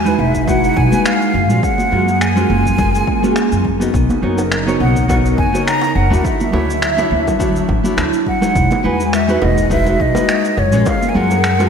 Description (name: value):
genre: sunset chillout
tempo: 104 BPM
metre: 4/4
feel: swing 55% on 16ths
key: B major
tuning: A4 = 440 Hz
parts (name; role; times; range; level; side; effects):
- breathy mellow silver concert flute; melody; 0.0-11.7 s; C#5 to A#5; -19 LUFS; equal; ping-pong delay
- nylon-string guitar; accompaniment; 0.0-11.7 s; G#3 to D#5; -18 LUFS; equal; auto-pan, low-pass filter, analog delay
- airy breathy pad; sustained chords; 0.0-11.7 s; C#3 to A#4; -21 LUFS; equal; chorus, phaser, vintage 12-bit sampler grit
- upright bass; bass; 0.0-11.7 s; E1 to F#2; -18 LUFS; equal; none
- cabasa and finger snaps; drums; 0.1-11.7 s; none; -23 LUFS; equal; none
- congas and bongos; percussion; 0.2-11.7 s; none; -25 LUFS; right 2 dB; none
- electronic kick drum; drums; 0.3-11.0 s; none; -21 LUFS; equal; overdrive
room: wet lush hall reverb, RT60 1.8 s, small room reverb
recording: dreamy mix soaked in reverb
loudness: -12 LUFS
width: side -6 dB against mid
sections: 0.0-11.7 A section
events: none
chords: 0.0 Emaj9; 1.3 F#maj9; 3.9 Bmaj9; 6.2 Dmaj9; 8.6 Emaj9; 10.6 F#maj9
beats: 0.48 1.05 | 1.63 2.21 2.79 3.36 | 3.94 4.52 5.09 5.67 | 6.25 6.82 7.40 7.98 | 8.55 9.13 9.71 10.29 | 10.86 11.44